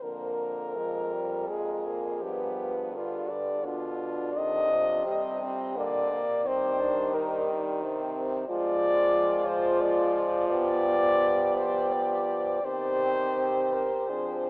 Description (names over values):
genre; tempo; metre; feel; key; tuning
classical, lyrical piece for horn quartet; 75-91 BPM; 3/4; rubato; C minor; A4 = 440 Hz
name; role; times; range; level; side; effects
warm French horn; melody; 0.0-14.5 s; F4 to Eb5; -28 LUFS; left 1 dB; none
warm French horn; second line; 0.0-14.5 s; G3 to G4; -32 LUFS; right 1 dB; none
mellow French horn; accompaniment; 0.0-14.5 s; C3 to C4; -35 LUFS; equal; none
warm French horn; bass; 0.0-14.5 s; F2 to F3; -33 LUFS; equal; none
room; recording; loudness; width
wet huge ambient reverb, RT60 7.7 s; in a vast, echoing space, telephone sound; -25 LUFS; side -25 dB against mid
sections
0.0-14.5 A section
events
none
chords
0.0 Ddim/F; 2.2 G7; 4.4 Cm; 6.5 Cm/Eb; 8.5 Ddim/F; 10.5 G7/F; 12.6 Cm/Eb